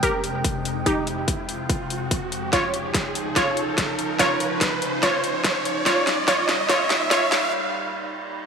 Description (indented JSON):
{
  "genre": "heavy wobble dubstep",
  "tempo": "144 BPM",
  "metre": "4/4",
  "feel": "swing 54% on 16ths, half-time",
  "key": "unclear",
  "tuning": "A4 = 440 Hz",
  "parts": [
    { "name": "wide unison pluck", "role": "melody", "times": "0.0-7.5 s", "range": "Eb4 to Db5", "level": "-24 LUFS", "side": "equal", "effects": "dub echo" },
    { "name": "evolving wavetable pad", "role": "sustained chords", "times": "0.0-8.5 s", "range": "Db2 to G5", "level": "-30 LUFS", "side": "right 1 dB", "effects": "chorus, built-in reverb, sidechain pumping" },
    { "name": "dubstep drum kit", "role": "drums", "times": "0.0-7.4 s", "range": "hi-hat, snare drum", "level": "-25 LUFS", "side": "left 1 dB", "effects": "high-pass filter on hats, high-pass filter on snare" },
    { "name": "electronic kick drum", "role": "drums", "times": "0.0-7.2 s", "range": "none", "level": "-28 LUFS", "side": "equal", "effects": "overdrive" },
    { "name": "riser and reverse cymbal", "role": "sound effects", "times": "0.0-8.5 s", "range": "none", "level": "-27 LUFS", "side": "right 2 dB", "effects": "none" }
  ],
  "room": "moderate plate reverb, RT60 1.9 s, digital ambience",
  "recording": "high-pass filter",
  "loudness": "-20 LUFS",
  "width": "side -6 dB against mid",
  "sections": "0.0-8.5 A section",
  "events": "build-up 0.0-8.5; riser 0.0-7.5; filter sweep 0.0-8.5; drum fill 2.5-7.5; break 7.5-8.5",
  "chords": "0.0 Fmadd9; 2.5 Dbadd9; 5.9 Eb"
}